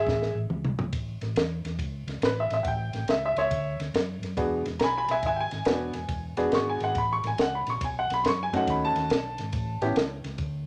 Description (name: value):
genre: electric blues shuffle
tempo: 139 BPM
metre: 4/4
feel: swing 66% on 8ths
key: E mixolydian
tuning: A4 = 441 Hz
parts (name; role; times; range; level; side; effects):
- warm upright piano; accompaniment; 0.0-10.1 s; A3 to C#6; -29 LUFS; equal; none
- hollow-body short-scale fingered electric bass; bass; 0.0-10.6 s; E1 to F#2; -36 LUFS; equal; none
- compact cocktail drum kit; drums; 0.1-10.5 s; kick drum, ride cymbal, snare drum, toms; -32 LUFS; equal; none
room: light reverb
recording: none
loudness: -28 LUFS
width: mono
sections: 0.0-10.7 A section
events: drum fill 0.1-0.9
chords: 0.0 E; 0.9 A7; 4.4 E9; 7.8 B9; 9.5 A